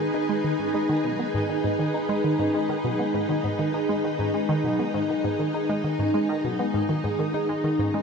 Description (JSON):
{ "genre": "ambient, sequencer-driven space music", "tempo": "100 BPM", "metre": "4/4", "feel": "straight", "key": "G# minor", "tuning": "A4 = 438 Hz", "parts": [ { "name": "string machine, full ensemble", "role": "sustained chords", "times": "0.0-8.0 s", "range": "D#4 to B4", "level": "-25 LUFS", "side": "equal", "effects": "ensemble chorus" }, { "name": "vibraphone with soft mallets", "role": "arpeggios", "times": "0.0-8.0 s", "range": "F#3 to G#4", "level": "-32 LUFS", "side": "moving between left 5 dB and right 6 dB", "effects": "auto-pan, ping-pong delay" }, { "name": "analog pluck", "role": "riff", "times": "0.0-8.0 s", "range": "G#2 to D#4", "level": "-27 LUFS", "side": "equal", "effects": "chorus, ping-pong delay" } ], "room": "wet huge ambient reverb, RT60 7.9 s", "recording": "dreamy mix soaked in reverb", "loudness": "-22 LUFS", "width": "side -5 dB against mid", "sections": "0.0-8.0 A section", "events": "filter sweep on synth arpeggio sound 0.0-8.0", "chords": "0.0 G#m" }